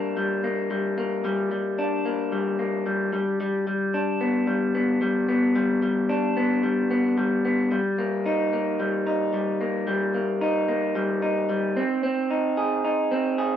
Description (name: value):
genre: indie pop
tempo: 111 BPM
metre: 4/4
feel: straight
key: unclear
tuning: A4 = 440 Hz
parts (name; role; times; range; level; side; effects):
- electric guitar through a small old amp; solo; 0.0-13.6 s; G3 to Ab4; -22 LUFS; left 1 dB; none
room: moderate studio reverb, RT60 0.6 s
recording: rough home demo mix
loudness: -22 LUFS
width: side -9 dB against mid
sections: 0.0-7.7 A section; 7.7-13.6 B section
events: none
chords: 0.0 Gm; 3.1 G; 7.7 Eb/G; 11.8 Ab/C